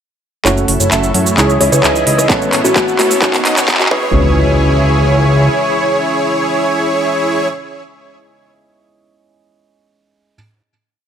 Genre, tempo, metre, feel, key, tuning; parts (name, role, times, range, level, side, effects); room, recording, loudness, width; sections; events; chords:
EDM, festival progressive house; 130 BPM; 4/4; straight; C# minor; A4 = 441 Hz
felt-muted upright piano; accompaniment; 0.4-10.4 s; G#3 to A4; -22 LUFS; right 3 dB
lush unison pad; sustained chords; 0.7-7.5 s; C#3 to A4; -23 LUFS; equal; chorus, sidechain pumping
wide unison lead; arpeggios; 0.5-7.5 s; C#5 to F#5; -19 LUFS; equal; vintage 12-bit sampler grit, sidechain pumping, digital delay
dense compressed supersaw; riff; 0.5-7.5 s; A3 to F#5; -17 LUFS; right 1 dB; sidechain pumping, low-pass filter, digital delay
fat analog bass; bass; 0.5-5.5 s; F#1 to A2; -15 LUFS; equal; sidechain pumping
big-room dance drum kit; drums; 0.5-3.9 s; handclaps, hi-hat, rim click, shaker; -15 LUFS; equal; small room ambience
riser and impact; sound effects; 1.8-7.5 s; -25 LUFS; equal
kalimba; melody; 1.6-4.1 s; F#4 to C#5; -18 LUFS; left 2 dB; digital delay
electronic kick drum; drums; 2.3-4.0 s; -17 LUFS; equal; small room ambience
moderate digital room reverb, RT60 1.2 s; high-pass filter; -10 LUFS; side -8 dB against mid
0.5-4.1 build; 4.1-7.8 final note
build-up 0.5-4.1; drum fill 0.5-4.1; filter sweep on supersaw synth 0.5-4.1; filter sweep on analog synth lead 0.5-4.1
0.5 F#m7; 1.4 C#m; 2.3 Aadd9; 3.2 Badd9; 3.9 C#m